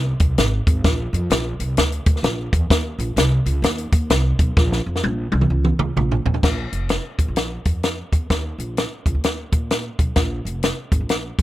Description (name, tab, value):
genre	uptempo 1960s-style soul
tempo	129 BPM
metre	4/4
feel	swing 62% on 8ths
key	unclear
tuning	A4 = 440 Hz
part	upright bass	bass	0.0-11.4 s	F1 to Bb2	-22 LUFS	equal	none
part	compact cocktail drum kit	drums	0.2-11.4 s	crash cymbal, hi-hat, kick drum, snare drum, toms	-19 LUFS	equal	none
room	little or no reverb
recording	none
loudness	-18 LUFS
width	side -15 dB against mid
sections	0.0-6.4 A section; 6.4-11.4 B section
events	drum fill 4.6-6.4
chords	none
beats	0.39 | 0.85 1.32 1.78 2.25 | 2.71 3.18 3.64 4.11 | 4.57 5.04 5.50 5.97 | 6.43 6.90 7.37 7.83 | 8.30 8.77 9.23 9.70 | 10.17 10.63 11.10